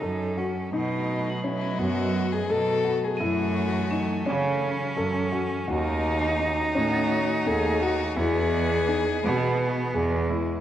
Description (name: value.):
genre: contemporary instrumental, chamber music in an uneven meter.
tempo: 169 BPM (eighths).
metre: 7/8.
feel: straight.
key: unclear.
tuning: A4 = 443 Hz.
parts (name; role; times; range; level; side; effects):
bright cello; second line; 0.0-10.6 s; F#3 to D#4; -30 LUFS; right 2 dB; none.
rich chamber string section; sustained chords; 0.0-10.6 s; D#3 to G#5; -35 LUFS; equal; none.
dark baby grand piano; arpeggios; 0.0-10.6 s; A3 to A4; -30 LUFS; left 2 dB; none.
rich cello; bass; 0.0-10.5 s; D#2 to C#3; -28 LUFS; right 2 dB; none.
rich violin; melody; 0.7-10.3 s; D#4 to A4; -30 LUFS; left 4 dB; none.
crotales; texture; 1.3-7.8 s; A6 to F#7; -41 LUFS; equal; none.
room: wet concert hall reverb, RT60 1.7 s.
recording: worn, warbling old tape, cassette tape, warbly pitch drift.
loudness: -23 LUFS.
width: side -11 dB against mid.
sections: 0.7-10.6 A section.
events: none.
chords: 0.0 F#m; 0.7 B7; 3.2 F#m9; 5.7 D#m7b5; 8.2 Emaj7.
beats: 0.02 0.38 | 0.73 1.08 1.44 1.79 2.15 2.50 2.85 | 3.21 3.56 3.92 4.27 4.62 4.98 5.33 | 5.69 6.04 6.40 6.75 7.11 7.46 7.81 | 8.17 8.52 8.88 9.23 9.59 9.94 10.30.